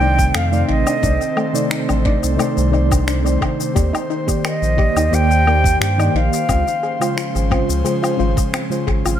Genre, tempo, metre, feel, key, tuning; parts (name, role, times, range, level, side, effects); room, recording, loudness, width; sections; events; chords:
sunset chillout; 88 BPM; 4/4; straight; C dorian; A4 = 440 Hz
concert flute; melody; 0.0-9.2 s; Eb5 to F6; -21 LUFS; right 1 dB; dub echo
mellow FM electric piano; accompaniment; 0.0-9.2 s; C3 to D5; -22 LUFS; right 1 dB; chorus, tremolo, auto-pan, cassette tape, dub echo
airy breathy pad; sustained chords; 0.0-9.2 s; Eb3 to C5; -25 LUFS; left 1 dB; chorus
soft round pluck; arpeggios; 0.0-9.2 s; A3 to Ab4; -26 LUFS; left 3 dB; chorus, dub echo
warm sub bass; bass; 0.0-9.2 s; Ab1 to G2; -18 LUFS; equal
electronic kick drum; drums; 0.2-9.0 s; -20 LUFS; equal
electronic shaker, finger snaps and woodblock; drums; 0.2-9.2 s; -26 LUFS; left 3 dB; tape echo
light reverb, digital ambience; echo-heavy mix; -15 LUFS; side -10 dB against mid
0.0-9.2 A section
0.0 Cm69; 3.8 Ebmaj7; 6.5 Dbmaj7